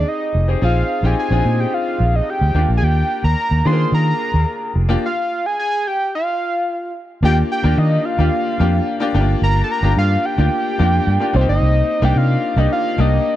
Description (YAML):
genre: polished 1980s jazz-funk pop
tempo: 109 BPM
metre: 4/4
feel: straight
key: Eb major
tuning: A4 = 439 Hz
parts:
  - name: fat analog lead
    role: melody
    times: 0.0-13.4 s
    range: C5 to C6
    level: -20 LUFS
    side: equal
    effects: chorus, slapback echo
  - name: bright baby grand piano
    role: accompaniment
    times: 0.0-13.4 s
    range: A3 to Bb4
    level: -22 LUFS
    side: left 3 dB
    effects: analog chorus
  - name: vintage muted fingered electric bass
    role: bass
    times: 0.0-13.2 s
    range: F1 to Eb3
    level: -15 LUFS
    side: equal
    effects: none
room: little or no reverb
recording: dry, close 1970s-style studio recording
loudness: -15 LUFS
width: side -13 dB against mid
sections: 0.0-7.2 A section; 7.2-13.4 B section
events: stop 5.0-7.2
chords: 0.0 Fm9; 0.6 Bb7sus4; 2.6 Ebmaj7; 5.0 N.C.; 7.2 Ebmaj9; 9.1 Gm7; 11.3 Cm7